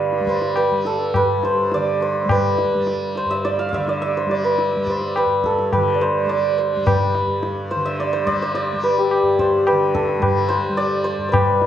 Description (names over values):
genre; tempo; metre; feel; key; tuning
indian classical, Hindustani; 106 BPM; 4/4; straight; G raga khamaj; A4 = 440 Hz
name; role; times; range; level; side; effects
santur; melody; 0.0-11.7 s; G4 to G5; -18 LUFS; equal; tape echo
tanpura; drone; 0.0-11.7 s; G2 to G3; -26 LUFS; equal; none
tabla; percussion; 0.1-11.7 s; none; -24 LUFS; left 2 dB; none
room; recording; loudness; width
wet recital hall reverb, RT60 1.7 s; worn, warbling old tape, cassette tape, warbly pitch drift; -17 LUFS; side -10 dB against mid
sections
0.0-11.7 A section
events
speeding up 0.0-11.7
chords
none